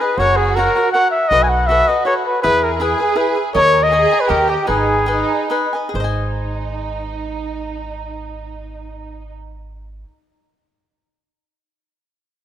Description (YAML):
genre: mexican folk, mariachi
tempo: 135-162 BPM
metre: 3/4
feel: straight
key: G# minor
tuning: A4 = 438 Hz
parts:
  - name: mellow trumpet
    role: melody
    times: 0.0-5.5 s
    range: G4 to G#5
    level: -15 LUFS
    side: left 1 dB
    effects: none
  - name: warm symphonic violin section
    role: second line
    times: 0.0-9.3 s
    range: D#4 to A#4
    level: -23 LUFS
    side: right 6 dB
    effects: none
  - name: cavaquinho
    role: accompaniment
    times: 0.0-10.1 s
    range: E4 to A#5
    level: -22 LUFS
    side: left 3 dB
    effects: none
  - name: upright bass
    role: bass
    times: 0.2-10.0 s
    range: F#1 to E2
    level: -24 LUFS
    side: right 1 dB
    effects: none
room: moderate lush hall reverb, RT60 2.5 s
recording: rough home demo mix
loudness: -14 LUFS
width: side -10 dB against mid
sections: 0.0-5.9 A section; 5.9-8.6 B section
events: slowing down 3.5-5.9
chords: 0.2 F#; 1.3 B7; 2.4 E; 3.5 D#7sus4; 4.3 D#7; 4.7 G#m; 5.9 G#